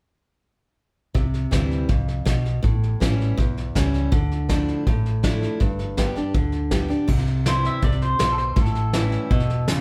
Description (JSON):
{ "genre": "honky-tonk and classic country", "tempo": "162 BPM", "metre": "4/4", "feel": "straight", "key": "C major", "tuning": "A4 = 440 Hz", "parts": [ { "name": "picked steel-string acoustic guitar", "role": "accompaniment", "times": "1.1-9.8 s", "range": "E2 to G4", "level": "-28 LUFS", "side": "equal", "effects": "none" }, { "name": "soft brush drum kit", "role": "drums", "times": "1.1-9.8 s", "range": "crash cymbal, hi-hat, kick drum, snare drum", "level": "-25 LUFS", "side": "equal", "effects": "none" }, { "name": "hollow-body short-scale fingered electric bass", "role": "bass", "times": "1.2-9.8 s", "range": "E1 to D2", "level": "-27 LUFS", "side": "equal", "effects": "none" }, { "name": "pedal steel guitar", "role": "second line", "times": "7.5-9.8 s", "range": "A4 to E5", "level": "-28 LUFS", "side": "equal", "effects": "none" } ], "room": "moderate studio reverb, RT60 0.8 s", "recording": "heard from further back in the room", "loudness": "-22 LUFS", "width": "mono", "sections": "1.2-7.1 A section; 7.1-9.8 B section", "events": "pedal steel guitar solo 7.1-9.8", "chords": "1.2 C; 2.6 A7; 4.1 Dmadd9; 5.6 G; 7.1 C; 8.6 A7" }